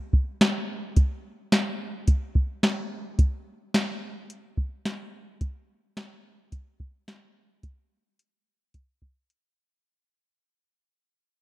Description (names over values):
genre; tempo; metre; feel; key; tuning
dream pop; 108 BPM; 4/4; straight; none; none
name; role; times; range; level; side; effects
soft vintage rhythm box; drums; 0.1-9.4 s; hi-hat, kick drum, snare drum; -23 LUFS; equal; none
room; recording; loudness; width
light reverb; rough home demo mix; -24 LUFS; side -17 dB against mid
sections
0.0-9.9 A section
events
fade-out 0.0-9.9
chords
none